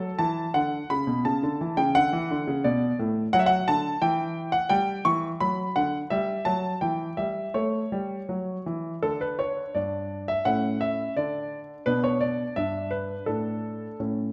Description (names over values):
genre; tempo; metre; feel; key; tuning
classical-period piano sonatina; 85 BPM; 2/4; rubato; unclear; A4 = 441 Hz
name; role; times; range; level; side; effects
clear grand piano; solo; 0.0-14.3 s; G2 to C#6; -27 LUFS; equal; none
room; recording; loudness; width
wet recital hall reverb, RT60 1.3 s; none; -27 LUFS; mono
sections
0.0-9.0 A section; 9.0-14.3 B section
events
none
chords
0.0 A5; 0.5 D; 1.2 A/C#; 1.9 D; 3.3 D/F#; 4.0 N.C.; 4.7 Em6; 5.4 D/F#; 6.1 Em; 7.5 A; 9.0 N.C.; 9.8 G5; 10.5 A; 11.2 N.C.; 11.9 Bm; 12.6 Em7/G; 13.3 Asus4